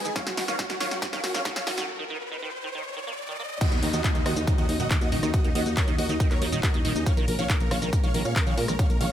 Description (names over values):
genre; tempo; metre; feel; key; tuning
uplifting trance; 139 BPM; 4/4; straight; Eb minor; A4 = 440 Hz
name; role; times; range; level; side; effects
lush unison pad; sustained chords; 0.0-9.1 s; Eb3 to Cb5; -36 LUFS; left 1 dB; chorus, sidechain pumping
liquid acid bass; arpeggios; 0.0-9.1 s; Eb3 to Bb3; -35 LUFS; right 3 dB; phaser, analog chorus, sidechain pumping, dub echo
solid FM bass; bass; 0.0-9.1 s; Eb1 to Bb2; -30 LUFS; equal; sidechain pumping, high-pass filter
riser and downlifter; sound effects; 0.1-7.1 s; none; -36 LUFS; equal; none
big supersaw lead; melody; 0.1-9.1 s; Eb4 to F5; -30 LUFS; right 1 dB; sidechain pumping, digital delay
punchy analog drum machine; drums; 0.1-9.1 s; crash cymbal, handclaps, hi-hat, rim click, shaker, snare drum; -31 LUFS; equal; sidechain pumping on hats, sidechain pumping on perc, sidechain pumping on cymbals
electronic kick drum; drums; 0.2-8.9 s; none; -24 LUFS; equal; none
room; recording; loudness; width
light reverb; high-pass filter; -23 LUFS; side -10 dB against mid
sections
0.0-3.6 A section; 3.6-9.1 B section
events
build-up 0.0-3.6; drum fill 0.0-1.9; riser 0.1-3.6; break 1.9-3.6; drop 3.6-9.1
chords
0.2 Gbmaj7; 3.6 Ebm7; 7.1 Bbm7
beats
| 0.16 0.59 1.02 1.45 | 1.89 2.32 2.75 3.18 | 3.61 4.04 4.47 4.91 | 5.34 5.77 6.20 6.63 | 7.06 7.50 7.93 8.36 | 8.79